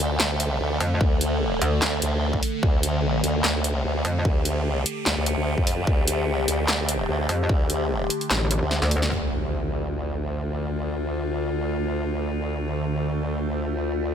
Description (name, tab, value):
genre	heavy wobble dubstep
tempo	148 BPM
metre	4/4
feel	swing 54% on 16ths, half-time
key	D minor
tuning	A4 = 444 Hz
part	evolving wavetable pad	sustained chords	0.0-14.1 s	D3 to A4	-28 LUFS	equal	phaser, built-in reverb, sidechain pumping
part	formant-sweep wobble bass	bass	0.0-14.1 s	D2 to F2	-26 LUFS	equal	chorus, overdrive
part	big-room dance drum kit	drums	0.2-9.1 s	handclaps, hi-hat, snare drum	-25 LUFS	equal	none
part	metallic wobble bass	bass	0.8-4.2, 7.3-9.1 s	A1 to F2	-22 LUFS	equal	chorus, overdrive
part	electronic kick drum	drums	1.0-7.6 s	none	-22 LUFS	equal	none
part	impact	sound effects	9.1-10.7 s	none	-33 LUFS	equal	none
room	light reverb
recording	none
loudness	-22 LUFS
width	side -8 dB against mid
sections	0.0-9.1 A section; 9.1-14.1 B section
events	drop 0.0-9.1; kick drops out 8.3-9.1; drum fill 8.7-9.1; band accent 9.0; impact 9.1-10.7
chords	0.0 D5; 9.1 Dm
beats	0.20 0.60 | 1.01 1.41 1.82 2.22 | 2.63 3.04 3.44 3.85 | 4.25 4.66 5.06 5.47 | 5.87 6.28 6.68 7.09 | 7.49 7.90 8.30 8.71 | 9.12 9.52 9.93 10.33 | 10.74 11.14 11.55 11.95 | 12.36 12.76 13.17 13.57 | 13.98